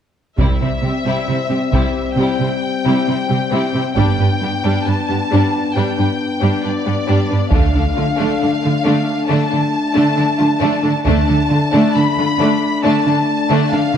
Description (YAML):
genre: cinematic, epic orchestral film score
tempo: 68 BPM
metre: 4/4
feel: straight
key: D dorian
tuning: A4 = 440 Hz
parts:
  - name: warm symphonic violin section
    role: melody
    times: 0.4-14.0 s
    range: D5 to B5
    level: -22 LUFS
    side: left 4 dB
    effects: none
  - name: warm symphonic violin section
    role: second line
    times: 0.4-13.8 s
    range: G3 to C5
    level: -23 LUFS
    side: left 2 dB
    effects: none
  - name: rich symphonic viola section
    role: accompaniment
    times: 0.4-14.0 s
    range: G3 to D4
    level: -22 LUFS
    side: right 1 dB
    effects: none
  - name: dark French horn section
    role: sustained chords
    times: 0.4-14.0 s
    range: G3 to D4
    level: -20 LUFS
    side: left 4 dB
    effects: none
  - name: rich symphonic cello section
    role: bass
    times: 0.4-14.0 s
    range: G2 to D3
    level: -19 LUFS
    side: right 3 dB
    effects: none
  - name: rich symphonic double bass section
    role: bass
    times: 0.4-11.3 s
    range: G1 to D2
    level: -19 LUFS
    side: right 3 dB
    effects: none
  - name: solo taiko drums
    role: drums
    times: 0.4-2.1, 7.5-9.2 s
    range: none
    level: -19 LUFS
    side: equal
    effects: none
room: moderate concert hall reverb, RT60 2.1 s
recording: dark, warm production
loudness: -14 LUFS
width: side -8 dB against mid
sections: 0.4-14.0 A section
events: none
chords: 0.4 C; 4.0 G; 7.5 Dm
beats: | 0.39 1.28 2.18 3.07 | 3.96 4.85 5.74 6.63 | 7.51 8.40 9.28 10.17 | 11.05 11.94 12.83 13.71